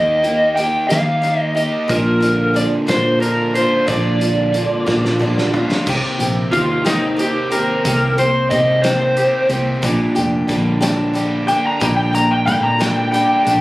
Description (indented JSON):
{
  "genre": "folk rock and heartland rock",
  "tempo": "60 BPM (dotted quarters)",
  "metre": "6/8",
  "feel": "straight",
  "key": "C minor",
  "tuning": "A4 = 440 Hz",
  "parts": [
    { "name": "overdriven slide guitar", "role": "melody", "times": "0.0-13.6 s", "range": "Eb4 to Bb5", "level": "-17 LUFS", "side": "equal", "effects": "none" },
    { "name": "picked steel-string acoustic guitar", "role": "accompaniment", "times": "0.0-13.6 s", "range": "Bb2 to G4", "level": "-21 LUFS", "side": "equal", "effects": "none" },
    { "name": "crunchy overdriven guitar", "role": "riff", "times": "0.0-13.6 s", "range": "Bb2 to G4", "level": "-22 LUFS", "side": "right 1 dB", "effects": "none" },
    { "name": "hollow-body short-scale picked electric bass", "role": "bass", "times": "0.0-13.6 s", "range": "F1 to Eb3", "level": "-22 LUFS", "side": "equal", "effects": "none" },
    { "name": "loose indie drum kit", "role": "drums", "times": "0.2-13.6 s", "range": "crash cymbal, hi-hat, kick drum, snare drum, toms", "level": "-24 LUFS", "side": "equal", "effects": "none" }
  ],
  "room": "light reverb, small room ambience",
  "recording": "recorded on a phone in the room, studio reverb, compression",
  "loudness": "-14 LUFS",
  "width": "side -18 dB against mid",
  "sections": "0.0-5.9 A section; 5.9-13.6 B section",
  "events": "drum fill 4.9-5.9; electric slide guitar solo 5.9-13.6",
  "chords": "0.0 Eb; 1.9 Bb; 5.9 Cm7; 9.8 Gm"
}